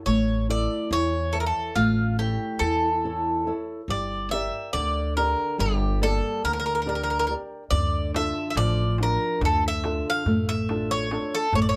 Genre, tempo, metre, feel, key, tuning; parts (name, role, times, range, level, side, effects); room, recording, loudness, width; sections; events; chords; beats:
greek folk, Greek bouzouki band; 141 BPM (eighths); 9/8; straight; D harmonic minor; A4 = 441 Hz
Greek bouzouki; melody; 0.1-11.8 s; F4 to F5; -28 LUFS; equal
flamenco guitar; accompaniment; 0.1-11.8 s; D3 to E5; -31 LUFS; equal
upright bass; bass; 0.1-11.8 s; G1 to E2; -30 LUFS; equal
darbuka; percussion; 7.7-11.7 s; -32 LUFS; equal
moderate small room reverb, RT60 0.5 s; -25 LUFS; mono
0.1-11.8 A section
0.1 A; 3.9 Gm; 7.7 Dm
| 0.07 0.49 0.92 1.34 1.77 2.19 2.62 3.04 3.47 | 3.89 4.32 4.74 5.17 5.59 6.01 6.44 6.86 7.29 | 7.71 8.13 8.56 8.98 9.41 9.83 10.26 10.68 11.11 | 11.53